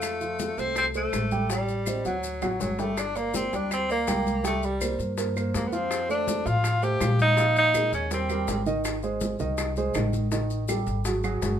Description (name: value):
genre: Afro-Cuban jazz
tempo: 163 BPM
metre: 4/4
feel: straight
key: unclear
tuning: A4 = 440 Hz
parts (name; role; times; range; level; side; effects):
- clear tenor saxophone; melody; 0.0-8.6 s; Gb3 to G4; -26 LUFS; equal; none
- dark concert grand piano; accompaniment; 0.0-11.5 s; Eb3 to G5; -30 LUFS; right 3 dB; none
- upright bass; bass; 0.0-11.6 s; G1 to Bb2; -30 LUFS; left 1 dB; none
- bongos; percussion; 0.0-11.6 s; none; -36 LUFS; left 6 dB; none
- claves; percussion; 0.0-11.4 s; none; -39 LUFS; right 3 dB; none
- congas; percussion; 0.0-11.6 s; none; -35 LUFS; left 1 dB; none
- maracas; percussion; 0.0-11.6 s; none; -39 LUFS; left 6 dB; none
room: moderate club reverb, RT60 0.8 s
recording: minimal, uncompressed stereo recording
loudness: -24 LUFS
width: side -9 dB against mid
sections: 0.0-3.0 A section; 3.0-11.6 B section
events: drum fill 2.1-3.0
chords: 0.0 F; 1.5 Am7b5; 2.2 D; 3.0 Gm; 4.4 C5; 5.9 F69; 7.4 Bb7sus4; 8.1 Eb6; 8.9 Ab; 10.3 Ebadd11; 11.1 Dadd11 (rootless)